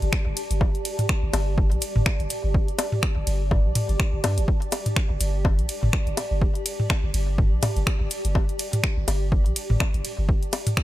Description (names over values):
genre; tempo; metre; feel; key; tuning
minimal techno; 124 BPM; 4/4; swing 57% on 16ths; unclear; A4 = 439 Hz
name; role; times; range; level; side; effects
punchy sub bass; bass; 0.0-10.3 s; G1 to G2; -24 LUFS; equal; sidechain pumping
punchy analog drum machine; drums; 0.0-10.8 s; finger snaps, hi-hat, ride cymbal; -29 LUFS; equal; overdrive
granular cloud pad; texture; 0.0-10.8 s; G4 to A5; -32 LUFS; right 1 dB; built-in reverb, sidechain pumping
electronic kick drum; drums; 0.1-10.8 s; none; -23 LUFS; equal; overdrive
electronic bongos and toms; percussion; 0.6-10.8 s; none; -26 LUFS; left 1 dB; none
room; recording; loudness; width
little or no reverb; none; -21 LUFS; side -15 dB against mid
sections
0.0-10.8 A section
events
none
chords
0.0 G5